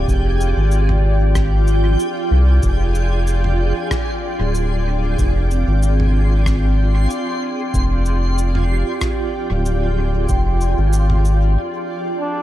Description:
ambient dub; 94 BPM; 4/4; swing 53% on 16ths; F dorian; A4 = 438 Hz
granular cloud pad; sustained chords; 0.0-12.4 s; F4 to G5; -24 LUFS; right 1 dB; built-in reverb
vibraphone with medium mallets; arpeggios; 0.0-12.4 s; C4 to G5; -27 LUFS; right 2 dB; ping-pong delay
round analog bass; bass; 0.0-11.6 s; D1 to C2; -16 LUFS; equal; tube saturation
backwards swelling texture; texture; 0.0-11.6 s; Ab4 to C6; -30 LUFS; equal; built-in reverb, ensemble chorus
damped 70s drum kit; drums; 0.1-11.4 s; cabasa, rim click, toms; -28 LUFS; right 1 dB; dub echo
electronic kick drum; drums; 0.1-10.4 s; -22 LUFS; equal
trombone with straight mute; melody; 12.2-12.4 s; D4; -21 LUFS; equal
small room ambience; -15 LUFS; side -13 dB against mid
0.0-12.4 A section
break 11.6-12.4
0.0 Fm69

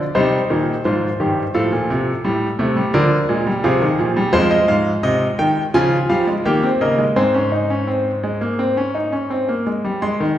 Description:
classical, baroque-style 4-part fugue for grand piano; 85 BPM; 4/4; straight; Ab major; A4 = 440 Hz
bright grand piano; solo; 0.0-10.4 s; F2 to C6; -16 LUFS; equal
wet recital hall reverb, RT60 1.8 s; heard from further back in the room, lossy compression artefacts; -16 LUFS; side -11 dB against mid
0.0-10.0 A section
0.2 Cm; 1.6 F/A; 2.9 Bb; 4.3 Fm; 5.7 Db; 6.5 Eb; 7.2 Ab

